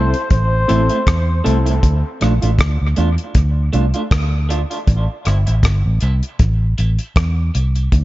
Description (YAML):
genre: dub reggae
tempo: 79 BPM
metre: 4/4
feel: swing 55% on 16ths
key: A minor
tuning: A4 = 440 Hz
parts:
  - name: warm flugelhorn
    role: melody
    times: 0.0-1.4 s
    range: C5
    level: -22 LUFS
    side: left 1 dB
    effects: dub echo
  - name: electric guitar at the edge of break-up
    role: accompaniment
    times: 0.0-7.8 s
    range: A3 to F4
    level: -24 LUFS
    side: right 3 dB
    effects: high-pass filter, dub echo
  - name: overdriven reed electric piano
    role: stabs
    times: 0.0-1.7 s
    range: C4 to A4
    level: -24 LUFS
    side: left 3 dB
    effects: fast tremolo, dub echo
  - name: vintage muted fingered electric bass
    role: bass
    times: 0.0-8.0 s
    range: G1 to E2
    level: -15 LUFS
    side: equal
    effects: none
  - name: damped 70s drum kit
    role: drums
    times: 0.1-8.0 s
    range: hi-hat, kick drum, rim click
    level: -17 LUFS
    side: equal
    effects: none
room: small room reverb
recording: echo-heavy mix, nothing above 7.6 kHz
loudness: -14 LUFS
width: side -17 dB against mid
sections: 0.0-8.0 A section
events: filter sweep on clean electric guitar 1.8-8.0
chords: 0.0 Am; 1.8 Dm; 4.9 Am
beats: 0.31 1.07 | 1.83 2.59 3.35 4.11 | 4.87 5.63 6.39 7.16 | 7.92